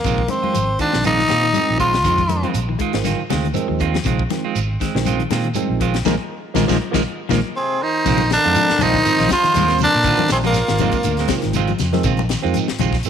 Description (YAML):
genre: afrobeat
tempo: 120 BPM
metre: 4/4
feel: swing 54% on 16ths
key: Bb mixolydian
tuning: A4 = 445 Hz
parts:
  - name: raspy tenor saxophone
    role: melody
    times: 0.0-2.5, 7.6-11.4 s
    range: Bb3 to F4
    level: -17 LUFS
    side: equal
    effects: none
  - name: clean electric guitar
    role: arpeggios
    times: 0.0-12.9 s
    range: Bb2 to Ab3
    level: -26 LUFS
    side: left 11 dB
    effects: none
  - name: clean electric guitar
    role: stabs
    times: 0.0-13.0 s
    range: Eb3 to F4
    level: -25 LUFS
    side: right 11 dB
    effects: none
  - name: fingered electric bass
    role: bass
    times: 0.0-13.0 s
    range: Ab1 to Bb2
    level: -22 LUFS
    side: equal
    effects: none
  - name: tight funk drum kit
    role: drums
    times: 0.0-13.1 s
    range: crash cymbal, hi-hat, kick drum, snare drum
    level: -26 LUFS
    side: left 4 dB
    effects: none
  - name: shekere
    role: percussion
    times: 0.1-13.1 s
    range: none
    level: -29 LUFS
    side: right 7 dB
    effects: none
  - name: barky tine electric piano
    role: accompaniment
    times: 0.3-13.1 s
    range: Eb3 to C4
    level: -26 LUFS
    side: right 11 dB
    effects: phaser
  - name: congas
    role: percussion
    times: 0.3-12.9 s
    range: none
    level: -26 LUFS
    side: left 12 dB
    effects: none
  - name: clear trombone section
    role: second line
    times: 7.6-11.4 s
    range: Bb2 to F3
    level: -30 LUFS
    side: left 11 dB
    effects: tape echo
  - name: growling trumpet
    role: second line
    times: 7.6-11.4 s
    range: F4 to C5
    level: -26 LUFS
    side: right 10 dB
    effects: none
room: light reverb, small room ambience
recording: 1960s-style stereo with parts hard left and right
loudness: -16 LUFS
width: side -8 dB against mid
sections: 0.0-8.1 A section; 8.1-13.1 B section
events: band accent 6.1-8.1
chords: 0.0 Bb9sus4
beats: | 0.06 0.56 1.06 1.56 | 2.06 2.56 3.06 3.56 | 4.06 4.56 5.06 5.56 | 6.06 6.56 7.06 7.56 | 8.06 8.56 9.06 9.55 | 10.05 10.55 11.05 11.55 | 12.05 12.54 13.04